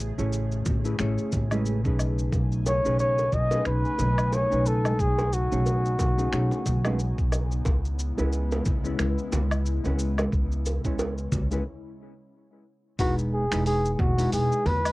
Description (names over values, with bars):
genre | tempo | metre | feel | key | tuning
sunset chillout | 90 BPM | 4/4 | swing 58% on 16ths | E major | A4 = 437 Hz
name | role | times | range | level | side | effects
hollow-body jazz guitar | accompaniment | 0.0-14.9 s | G#3 to G#5 | -32 LUFS | equal | auto-pan, cassette tape, analog delay
airy breathy pad | sustained chords | 0.0-14.9 s | C#3 to G#5 | -37 LUFS | left 1 dB | chorus, cassette tape
upright bass | bass | 0.0-14.9 s | E1 to E2 | -26 LUFS | equal | none
dusty soul sampler-style drum kit | drums | 0.2-14.9 s | cabasa, finger snaps, hi-hat, woodblock | -35 LUFS | left 1 dB | studio ambience
electronic kick drum | drums | 0.7-14.1 s | none | -28 LUFS | equal | studio ambience
congas and bongos | percussion | 0.7-14.8 s | none | -33 LUFS | right 2 dB | none
breathy flugelhorn | melody | 2.7-7.3, 13.0-14.9 s | F#4 to D#5 | -26 LUFS | equal | none
room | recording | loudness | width
moderate booth ambience, RT60 0.2 s | home recording on cassette | -23 LUFS | side -20 dB against mid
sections
0.0-13.0 A section; 13.0-14.9 B section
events
filter sweep on hollow-body jazz guitar 0.0-13.0; break 11.7-13.0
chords
0.0 Amaj9; 2.0 B13; 7.7 C#m7; 13.0 Emaj7